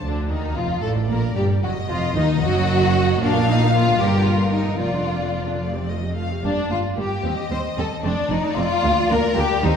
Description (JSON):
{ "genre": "quick classical-period movement for string orchestra", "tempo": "75 BPM (dotted quarters)", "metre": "6/8", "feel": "rubato", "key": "Bb major", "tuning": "A4 = 440 Hz", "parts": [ { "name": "warm symphonic violin section", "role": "melody", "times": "0.0-9.8 s", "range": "Bb4 to F5", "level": "-28 LUFS", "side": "left 3 dB", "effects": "none" }, { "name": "rich studio violin section", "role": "second line", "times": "0.0-9.8 s", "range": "D4 to C5", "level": "-23 LUFS", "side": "left 2 dB", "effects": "none" }, { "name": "rich symphonic viola section", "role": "accompaniment", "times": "0.0-9.7 s", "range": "C3 to D4", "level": "-26 LUFS", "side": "right 1 dB", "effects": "none" }, { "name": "dark symphonic cello section", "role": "bass", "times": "0.0-9.7 s", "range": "D2 to Bb2", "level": "-24 LUFS", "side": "right 2 dB", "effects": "none" }, { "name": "dark symphonic double bass section", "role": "bass", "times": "0.0-9.7 s", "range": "F1 to Eb2", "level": "-25 LUFS", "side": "right 1 dB", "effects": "none" } ], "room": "wet scoring stage reverb, RT60 1.8 s", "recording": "heard from further back in the room", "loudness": "-18 LUFS", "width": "side -7 dB against mid", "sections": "0.0-9.8 A section", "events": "none", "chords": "0.0 Bb; 1.6 Ebm; 3.2 Bb; 4.0 Gm; 4.8 Bb/F; 5.6 F; 6.4 Gm; 7.2 Cm; 8.0 F; 8.8 Bb", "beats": "| 0.03 0.83 | 1.63 2.43 | 3.21 3.99 | 4.80 5.62 | 6.44 7.25 | 8.05 8.84 | 9.63" }